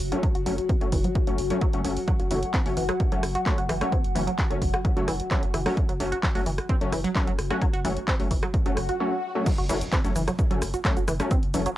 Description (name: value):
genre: driving peak-time techno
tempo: 130 BPM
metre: 4/4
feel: straight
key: F# minor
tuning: A4 = 439 Hz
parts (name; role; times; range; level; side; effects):
- saturated sub bass; bass; 0.0-11.7 s; F#1; -32 LUFS; equal; overdrive, sidechain pumping, low-pass filter
- overtone-sweeping drone; drone; 0.0-9.0 s; F#3 to F#4; -33 LUFS; left 3 dB; chorus, built-in reverb, sidechain pumping
- punchy analog drum machine; drums; 0.0-11.7 s; crash cymbal, handclaps, hi-hat, rim click, shaker; -32 LUFS; equal; cassette tape
- tight sequenced synth; riff; 0.1-11.7 s; E3 to F#4; -31 LUFS; right 1 dB; chorus, cassette tape, sidechain pumping, analog delay
- rave stab; stabs; 0.1-11.6 s; F#3 to C#4; -30 LUFS; left 1 dB; chorus, built-in reverb, sidechain pumping, tape echo
- electronic kick drum; drums; 0.2-11.4 s; none; -25 LUFS; equal; cassette tape
- swell and impact; sound effects; 8.7-11.3 s; none; -35 LUFS; left 1 dB; none
room: light reverb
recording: home recording on cassette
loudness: -22 LUFS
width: side -14 dB against mid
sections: 0.0-9.5 A section; 9.5-11.8 B section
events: swell 8.7-9.5; drop 9.5-11.8; impact 9.5-11.3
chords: 0.0 F#m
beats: | 0.23 0.69 1.16 1.62 | 2.08 2.54 3.00 3.46 | 3.92 4.39 4.85 5.31 | 5.77 6.23 6.69 7.16 | 7.62 8.08 8.54 9.00 | 9.46 9.92 10.39 10.85 | 11.31